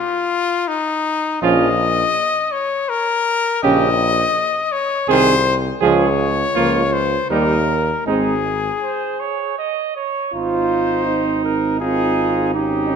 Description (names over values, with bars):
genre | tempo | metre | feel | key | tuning
classical, brass quintet | 81 BPM | 3/4 | straight | Ab major | A4 = 440 Hz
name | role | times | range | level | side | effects
mellow trumpet | melody | 0.0-13.0 s | Eb4 to Eb5 | -19 LUFS | left 5 dB | none
clear flugelhorn | second line | 1.4-13.0 s | Eb4 to Eb5 | -22 LUFS | right 8 dB | none
clear trombone | accompaniment | 1.4-13.0 s | Db3 to F4 | -22 LUFS | right 4 dB | none
warm French horn | accompaniment | 1.4-13.0 s | Ab3 to Db4 | -24 LUFS | equal | none
warm bass trombone | bass | 1.4-13.0 s | Ab1 to Eb2 | -22 LUFS | right 1 dB | none
room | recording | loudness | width
moderate scoring stage reverb, RT60 1.6 s | none | -16 LUFS | side -6 dB against mid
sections
0.0-10.3 A section; 10.3-13.0 A section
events
none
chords
0.0 N.C.; 1.4 Bbm; 3.6 Gdim/Bb (rootless); 5.1 Ab/C; 5.8 Db; 6.6 Bbm/Db; 7.3 Eb; 8.1 Ab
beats
0.68 | 1.43 2.16 2.89 | 3.64 4.37 5.09 | 5.82 6.56 7.31 | 8.07 8.83 9.58 | 10.34 11.07 11.81 | 12.55